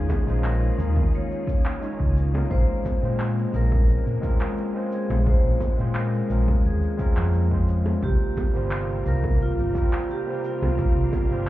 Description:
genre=sunset chillout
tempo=87 BPM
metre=4/4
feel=straight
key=unclear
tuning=A4 = 437 Hz
part: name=vibraphone with medium mallets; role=melody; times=0.0-11.5 s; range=F4 to Db5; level=-31 LUFS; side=right 1 dB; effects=ping-pong delay
part: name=overdriven tine electric piano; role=accompaniment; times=0.0-11.5 s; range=G3 to Db5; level=-31 LUFS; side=equal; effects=auto-pan
part: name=soft string machine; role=sustained chords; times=0.0-11.5 s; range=C3 to Bb4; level=-32 LUFS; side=left 1 dB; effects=ensemble chorus
part: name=hollow-body short-scale fingered electric bass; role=bass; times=0.0-11.5 s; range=G1 to Bb2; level=-22 LUFS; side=equal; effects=tube saturation
part: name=electronic cabasa and handclaps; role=drums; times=0.1-11.4 s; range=none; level=-36 LUFS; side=left 1 dB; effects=none
part: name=electronic kick drum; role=drums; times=0.1-11.3 s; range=none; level=-24 LUFS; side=equal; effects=overdrive
part: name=bongos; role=percussion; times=0.1-11.3 s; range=none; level=-36 LUFS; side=right 2 dB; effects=none
room=light reverb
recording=heard muffled through a wall, club reverb, EQ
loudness=-20 LUFS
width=side -15 dB against mid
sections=0.0-11.5 A section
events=none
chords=0.0 Bbm9; 8.0 C7sus4

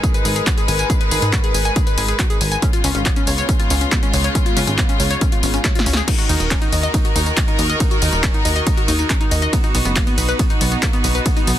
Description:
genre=uplifting trance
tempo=139 BPM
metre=4/4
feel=straight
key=Eb minor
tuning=A4 = 440 Hz
part: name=rich studio string section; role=sustained chords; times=0.0-11.6 s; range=Db3 to Cb5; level=-22 LUFS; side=equal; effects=sidechain pumping
part: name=analog pluck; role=arpeggios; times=0.0-11.5 s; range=Bb3 to Ab5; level=-24 LUFS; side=left 3 dB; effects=chorus, sidechain pumping, digital delay
part: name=electronic kick drum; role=drums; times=0.0-11.3 s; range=none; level=-18 LUFS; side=equal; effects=none
part: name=punchy analog drum machine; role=drums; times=0.0-11.6 s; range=crash cymbal, handclaps, hi-hat, ride cymbal, snare drum, tambourine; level=-22 LUFS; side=left 1 dB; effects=overdrive
part: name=plucky analog bass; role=bass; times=0.2-11.6 s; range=Eb1 to Ab2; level=-20 LUFS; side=equal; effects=sidechain pumping
room=little or no reverb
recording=dense, heavily limited modern master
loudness=-15 LUFS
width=side -12 dB against mid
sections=0.0-6.1 A section; 6.1-11.6 A section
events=drop 0.0-6.1, 6.1-11.6; drum fill 5.6-6.1; band accent 5.9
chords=0.0 Abmadd9; 2.6 Db7; 6.1 Ebm; 9.5 B

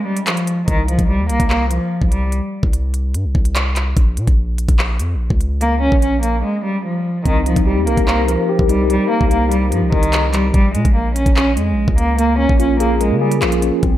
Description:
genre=hip hop, drill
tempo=146 BPM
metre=4/4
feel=half-time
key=unclear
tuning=A4 = 440 Hz
part: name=rich cello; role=melody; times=0.0-2.3, 5.6-13.8 s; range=Eb3 to Db4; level=-18 LUFS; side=equal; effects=low-pass filter, analog delay
part: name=drill drum kit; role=drums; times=0.2-13.9 s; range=handclaps, hi-hat, kick drum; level=-18 LUFS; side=equal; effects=none
part: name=long sustained 808-style bass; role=bass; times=0.7-14.0 s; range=Bb1 to Db3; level=-18 LUFS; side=equal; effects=none
part: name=mellow tine electric piano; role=accompaniment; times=7.3-14.0 s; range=Bb3 to C5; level=-19 LUFS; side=left 2 dB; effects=medium stereo tremolo, low-pass filter
room=light reverb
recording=none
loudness=-14 LUFS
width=side -13 dB against mid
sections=0.0-14.0 A section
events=break 0.0-0.7, 6.4-7.3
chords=0.0 N.C.; 4.0 Bbm; 7.3 Cm7; 10.5 Bbm7

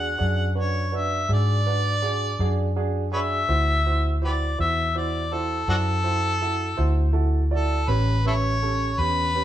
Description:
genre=slow blues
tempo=55 BPM (dotted quarters)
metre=12/8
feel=straight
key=unclear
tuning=A4 = 438 Hz
part: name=mellow harmonica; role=melody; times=0.0-9.4 s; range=D4 to F#5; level=-25 LUFS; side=left 1 dB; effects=none
part: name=clear upright piano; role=accompaniment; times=0.0-9.4 s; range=C#4 to D5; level=-29 LUFS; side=right 6 dB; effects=none
part: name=vintage muted fingered electric bass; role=bass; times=0.0-9.4 s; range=A1 to G#2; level=-23 LUFS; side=equal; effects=none
room=moderate large studio reverb, RT60 1.2 s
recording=band playing live in one room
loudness=-21 LUFS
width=side -12 dB against mid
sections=0.0-9.4 A section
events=harmonica solo 0.0-9.4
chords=0.0 E9 (rootless); 3.5 D9; 7.9 A9

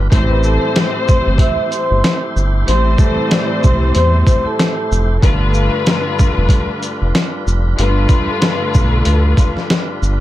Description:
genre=hip hop, boom-bap hip-hop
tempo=94 BPM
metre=4/4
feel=swing 58% on 16ths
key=A minor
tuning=A4 = 436 Hz
part: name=tonewheel organ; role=sustained chords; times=0.0-10.2 s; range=G3 to C5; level=-26 LUFS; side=right 1 dB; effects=overdrive, fast rotary speaker, high-pass filter, low-pass filter
part: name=round analog bass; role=bass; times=0.0-10.2 s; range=F1 to E2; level=-14 LUFS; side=equal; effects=none
part: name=warm studio string section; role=accompaniment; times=0.1-10.2 s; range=G2 to C5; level=-19 LUFS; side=left 2 dB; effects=high-pass filter, low-pass filter
part: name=trip hop sampler-style drum kit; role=drums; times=0.1-10.2 s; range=hi-hat, kick drum, shaker, snare drum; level=-14 LUFS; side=equal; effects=none
part: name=vibraphone with soft mallets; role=melody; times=0.3-5.2 s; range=A4 to E6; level=-20 LUFS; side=equal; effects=high-pass filter, low-pass filter, ping-pong delay
room=light reverb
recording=none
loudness=-12 LUFS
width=side -14 dB against mid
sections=0.0-10.2 A section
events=none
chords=0.1 Am7; 5.2 G7

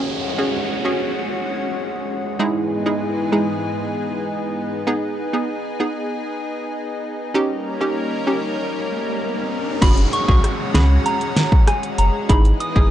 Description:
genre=dancehall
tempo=97 BPM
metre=4/4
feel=straight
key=unclear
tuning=A4 = 437 Hz
part: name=analog pluck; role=accompaniment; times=0.0-12.9 s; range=G#3 to G#4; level=-22 LUFS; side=right 2 dB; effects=chorus, sidechain pumping
part: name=lush unison pad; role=sustained chords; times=0.0-12.9 s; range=G#2 to A#4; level=-24 LUFS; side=left 1 dB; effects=chorus, sidechain pumping
part: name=downlifter and riser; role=sound effects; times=0.0-12.9 s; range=none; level=-29 LUFS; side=equal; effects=none
part: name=soft synth bell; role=melody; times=9.8-12.9 s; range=G#5 to D#6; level=-23 LUFS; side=right 1 dB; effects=chorus, phaser
part: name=sub bass with octave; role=bass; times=9.8-12.9 s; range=F#1 to C#2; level=-17 LUFS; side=equal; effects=none
part: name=pop drum kit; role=drums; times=9.8-12.9 s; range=crash cymbal, hi-hat, kick drum, rim click, snare drum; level=-16 LUFS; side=equal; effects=none
room=light reverb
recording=dark, warm production, nothing above 10.8 kHz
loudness=-18 LUFS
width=side -11 dB against mid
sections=0.0-9.8 A section; 9.8-12.9 B section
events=riser 8.4-9.8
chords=0.0 F#sus2; 2.4 Emaj7/G#; 4.9 G#m; 7.3 D#7; 9.8 F#sus2; 12.3 Emaj7/G#

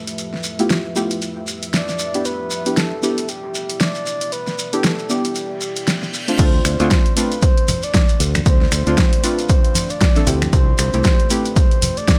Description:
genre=deep house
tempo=116 BPM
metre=4/4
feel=swing 58% on 16ths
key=D dorian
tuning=A4 = 438 Hz
part: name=deep dark ambient pad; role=sustained chords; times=0.0-12.2 s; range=F3 to B5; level=-34 LUFS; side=equal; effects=chorus, built-in reverb, sidechain pumping
part: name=deep house drum kit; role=drums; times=0.1-12.2 s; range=crash cymbal, finger snaps, hi-hat, snare drum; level=-24 LUFS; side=equal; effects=overdrive, studio reverb
part: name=shekere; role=percussion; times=0.1-12.2 s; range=none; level=-30 LUFS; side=equal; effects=none
part: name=deep mellow chord stab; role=stabs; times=0.6-11.5 s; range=A3 to A4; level=-24 LUFS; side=equal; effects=chorus, sidechain pumping
part: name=breathy flute-like synth lead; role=melody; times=1.7-12.2 s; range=G4 to D5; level=-28 LUFS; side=equal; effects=chorus, dub echo
part: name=reverse cymbal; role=sound effects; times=5.6-6.4 s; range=none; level=-32 LUFS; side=equal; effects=none
part: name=fingered electric bass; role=bass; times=6.4-11.0 s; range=C2 to D2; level=-22 LUFS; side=equal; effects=none
part: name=electronic kick drum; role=drums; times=6.4-12.2 s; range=none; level=-18 LUFS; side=equal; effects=overdrive, studio reverb
part: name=bongos and congas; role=percussion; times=6.8-11.9 s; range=none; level=-27 LUFS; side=equal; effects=none
room=little or no reverb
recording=none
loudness=-18 LUFS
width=mono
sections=0.0-6.4 A section; 6.4-12.2 B section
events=reverse cymbal 5.6-6.4; drop 6.4-12.2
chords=0.0 G13; 2.3 Em7; 6.4 Dm7; 10.5 C6

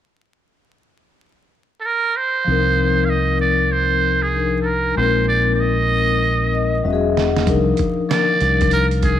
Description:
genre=hip hop, jazz-hop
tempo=96 BPM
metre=4/4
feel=swing 61% on 16ths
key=unclear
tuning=A4 = 440 Hz
part: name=trumpet with metal mute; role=melody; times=1.8-9.2 s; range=Ab4 to F5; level=-19 LUFS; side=right 4 dB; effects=none
part: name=vibraphone with soft mallets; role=accompaniment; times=2.4-9.1 s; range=F3 to F#5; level=-19 LUFS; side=left 5 dB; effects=none
part: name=deep dub fingered electric bass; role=bass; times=2.5-9.2 s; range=E1 to C2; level=-20 LUFS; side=equal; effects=none
part: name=trip hop sampler-style drum kit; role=drums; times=7.2-9.2 s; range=hi-hat, kick drum, snare drum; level=-22 LUFS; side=right 2 dB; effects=none
room=light reverb, digital ambience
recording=1960s-style stereo, vinyl crackle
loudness=-15 LUFS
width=side -10 dB against mid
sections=0.0-2.5 A section; 2.5-7.5 B section; 7.5-9.2 C section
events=vibraphone fill 6.2-7.5; drum fill 6.8-7.5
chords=0.0 N.C.; 2.5 Cm11; 5.0 Bb9sus4; 6.8 Emaj13; 7.5 Cm11

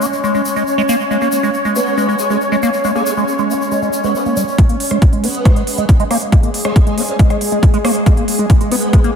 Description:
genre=psychedelic trance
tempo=138 BPM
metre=4/4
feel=straight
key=G# minor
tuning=A4 = 441 Hz
part: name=swarming drone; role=sustained chords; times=0.0-9.2 s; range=G#3 to Db5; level=-18 LUFS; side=equal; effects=built-in reverb, vintage 12-bit sampler grit, sidechain pumping
part: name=liquid acid bass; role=riff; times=0.0-9.1 s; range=G3 to B3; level=-18 LUFS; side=moving between left 6 dB and right 3 dB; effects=phaser, auto-pan, sidechain pumping, tape echo
part: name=tube shaker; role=percussion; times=0.0-4.6 s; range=none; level=-28 LUFS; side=left 4 dB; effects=none
part: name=formant-sweep wobble bass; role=second line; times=1.8-8.9 s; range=G#3 to C#4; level=-26 LUFS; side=right 2 dB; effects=ensemble chorus, sidechain pumping, high-pass filter, diffuse ambient delay
part: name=big-room dance drum kit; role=drums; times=4.6-9.1 s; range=hi-hat, rim click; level=-23 LUFS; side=right 2 dB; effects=overdrive
part: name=electronic kick drum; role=drums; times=4.6-9.0 s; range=none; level=-10 LUFS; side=equal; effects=none
room=moderate cathedral reverb, RT60 5.6 s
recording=dreamy mix soaked in reverb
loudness=-12 LUFS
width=side -7 dB against mid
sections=0.0-4.6 A section; 4.6-9.2 B section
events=filter sweep on acid bass 0.0-4.6, 4.6-9.2; build-up 4.6-9.2; drum fill 8.1-9.2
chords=none

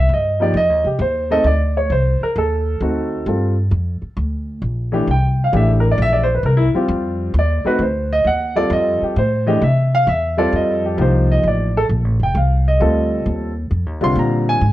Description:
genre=jazz piano trio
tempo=132 BPM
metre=4/4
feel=swing 68% on 8ths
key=F mixolydian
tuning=A4 = 440 Hz
part: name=warm grand piano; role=melody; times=0.0-14.7 s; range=D3 to C6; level=-17 LUFS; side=equal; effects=none
part: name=upright bass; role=bass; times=0.0-14.7 s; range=F1 to C3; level=-18 LUFS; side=equal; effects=none
room=light reverb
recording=worn, warbling old tape, cassette tape, warbly pitch drift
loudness=-15 LUFS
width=side -15 dB against mid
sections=0.0-10.5 A section; 10.5-14.7 A section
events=grand piano solo 0.0-14.7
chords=0.0 F7(no3) (rootless); 1.5 D7b9; 3.3 Gm7; 5.1 C7; 6.9 F7(no3); 7.8 D5; 8.7 F; 9.6 C; 10.5 F7; 14.2 Bb7

